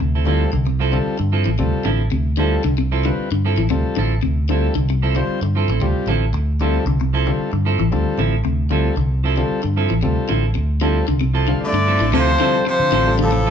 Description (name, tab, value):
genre	afrobeat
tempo	114 BPM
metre	4/4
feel	straight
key	D minor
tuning	A4 = 439 Hz
part	electric guitar at the edge of break-up	arpeggios	0.0-13.5 s	C3 to E3	-24 LUFS	left 5 dB	phaser
part	fingered electric bass	bass	0.0-13.5 s	A1 to D3	-19 LUFS	right 1 dB	none
part	combo organ	accompaniment	0.2-13.3 s	G3 to A5	-25 LUFS	left 3 dB	none
part	clean electric guitar	stabs	0.2-13.5 s	F3 to A4	-24 LUFS	right 6 dB	none
part	edgy baritone saxophone	second line	11.6-13.5 s	A2 to D3	-25 LUFS	left 4 dB	none
part	warm trombone	second line	11.6-13.5 s	F3 to A3	-24 LUFS	right 5 dB	none
part	breathy trumpet	melody	11.7-13.5 s	A4 to D5	-18 LUFS	left 2 dB	none
room	moderate large studio reverb, RT60 1.1 s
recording	band playing live in one room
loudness	-16 LUFS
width	side -8 dB against mid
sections	0.0-12.1 A section; 12.1-13.5 B section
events	transistor combo organ fill 11.1-12.1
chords	0.0 Dm9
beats	0.01 0.54 1.07 | 1.60 2.13 2.65 3.18 | 3.71 4.24 4.76 5.29 | 5.82 6.34 6.87 7.39 | 7.92 8.45 8.97 9.50 | 10.03 10.56 11.08 11.61 | 12.14 12.66 13.19